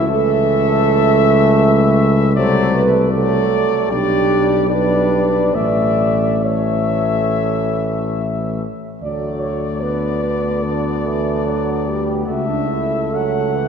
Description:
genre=classical, hymn-like piece for brass band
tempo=67-80 BPM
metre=4/4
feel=rubato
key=D major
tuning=A4 = 439 Hz
part: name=warm cornet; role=melody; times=0.0-13.7 s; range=D5 to F#5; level=-22 LUFS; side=left 6 dB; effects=none
part: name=mellow French horn section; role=second line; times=0.0-13.7 s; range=D4 to D5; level=-20 LUFS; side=right 6 dB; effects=none
part: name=clear euphonium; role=accompaniment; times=0.0-13.7 s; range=D3 to A3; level=-25 LUFS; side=right 1 dB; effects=none
part: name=mellow tuba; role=bass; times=0.0-13.7 s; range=A1 to D2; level=-19 LUFS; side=left 1 dB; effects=none
part: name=clear trombone section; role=accompaniment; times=0.1-13.7 s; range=A3 to D4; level=-24 LUFS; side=left 2 dB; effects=none
room=wet church reverb, RT60 3.6 s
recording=heard from further back in the room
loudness=-14 LUFS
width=side -7 dB against mid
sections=0.0-13.7 A section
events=none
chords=0.0 A/C#; 2.3 D7/C; 3.9 G/B; 5.5 A; 9.0 D; 12.3 A/C#

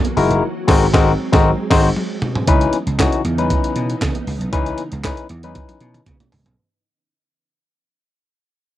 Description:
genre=early-eighties boogie funk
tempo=117 BPM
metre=4/4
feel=straight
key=C# dorian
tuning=A4 = 440 Hz
part: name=soft string machine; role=sustained chords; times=0.0-6.5 s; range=C#3 to D#4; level=-27 LUFS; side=right 1 dB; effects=ensemble chorus, cassette tape
part: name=breakbeat sampler-style drum kit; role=drums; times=0.0-6.6 s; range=crash cymbal, handclaps, hi-hat, kick drum, snare drum, toms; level=-18 LUFS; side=right 1 dB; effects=cassette tape
part: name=congas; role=percussion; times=0.0-6.3 s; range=none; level=-32 LUFS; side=right 10 dB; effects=none
part: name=barky tine electric piano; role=accompaniment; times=0.2-6.0 s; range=E3 to B#4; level=-18 LUFS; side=left 5 dB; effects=overdrive, cassette tape
part: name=vintage slap bass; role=bass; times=0.2-6.5 s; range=F#1 to C#3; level=-20 LUFS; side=right 1 dB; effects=none
room=light reverb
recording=home recording on cassette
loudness=-15 LUFS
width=side -13 dB against mid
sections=0.0-2.5 A section; 2.5-6.6 B section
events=band accent 0.4-2.5; drum fill 2.0-2.5, 5.6-6.6; fade-out 2.5-6.6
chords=0.4 G#9; 2.5 C#m9

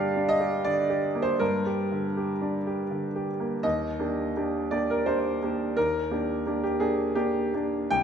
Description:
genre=neoclassical minimalist piano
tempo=83 BPM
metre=3/4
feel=uneven beats, rubato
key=unclear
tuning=A4 = 440 Hz
part: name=warm grand piano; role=solo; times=0.0-8.0 s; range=C2 to G5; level=-25 LUFS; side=right 1 dB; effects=none
room=wet scoring stage reverb, RT60 1.6 s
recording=none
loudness=-25 LUFS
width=side -7 dB against mid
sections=0.0-3.6 A section; 3.6-8.0 B section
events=none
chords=0.0 Gm; 3.6 Ebmaj7

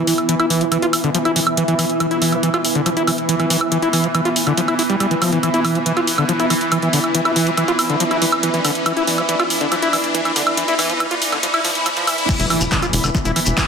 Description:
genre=psychedelic trance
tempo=140 BPM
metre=4/4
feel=straight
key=unclear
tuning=A4 = 441 Hz
part: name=bubbling stepped-filter texture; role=sustained chords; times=0.0-13.7 s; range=E3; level=-23 LUFS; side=right 2 dB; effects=chorus, built-in reverb, sidechain pumping
part: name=overdriven acid bass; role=riff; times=0.0-13.6 s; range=D3 to F4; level=-20 LUFS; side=equal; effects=auto-pan, sidechain pumping, dub echo
part: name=riser and impact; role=sound effects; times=2.7-13.7 s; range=none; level=-26 LUFS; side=left 1 dB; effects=none
part: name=granular cloud pad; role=texture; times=0.0-13.7 s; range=B3 to B5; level=-24 LUFS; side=left 1 dB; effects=built-in reverb, sidechain pumping
part: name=techno drum kit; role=drums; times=0.1-13.7 s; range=crash cymbal, handclaps, hi-hat, woodblock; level=-20 LUFS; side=right 1 dB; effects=overdrive
part: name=electronic kick drum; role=drums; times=12.3-13.7 s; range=none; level=-21 LUFS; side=left 1 dB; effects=none
part: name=shekere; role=percussion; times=12.3-13.7 s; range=none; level=-25 LUFS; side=left 4 dB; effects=none
part: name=tight sequencer bass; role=bass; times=12.4-13.5 s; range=E1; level=-20 LUFS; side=left 1 dB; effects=none
room=moderate plate reverb, RT60 1.2 s, digital ambience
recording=dense, heavily limited modern master, high-pass filter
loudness=-15 LUFS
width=side -6 dB against mid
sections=0.0-12.3 A section; 12.3-13.7 B section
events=build-up 0.0-12.3; filter sweep on acid bass 0.0-12.3; filter sweep 0.0-12.3; riser 2.7-12.3; drop 12.3-13.7; impact 12.3-13.7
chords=0.0 E5

